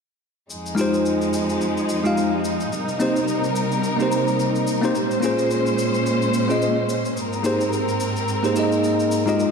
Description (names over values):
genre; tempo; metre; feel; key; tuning
sunset chillout; 108 BPM; 4/4; swing 57% on 16ths; F minor; A4 = 439 Hz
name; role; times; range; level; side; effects
warm studio string section; sustained chords; 0.5-9.5 s; F2 to C5; -23 LUFS; left 1 dB; shimmer reverb
shaker; drums; 0.5-9.5 s; none; -34 LUFS; left 2 dB; none
bell-like tine electric piano; accompaniment; 0.7-9.5 s; Ab3 to F5; -21 LUFS; moving between left 2 dB and right 4 dB; auto-pan, digital delay, shimmer reverb, slapback echo
room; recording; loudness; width
wet scoring stage reverb, RT60 2.0 s; big arena sound; -19 LUFS; side -5 dB against mid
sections
0.5-9.5 A section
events
none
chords
0.5 Fm7; 2.7 Cm7; 5.0 Bbm9; 7.2 Abmaj9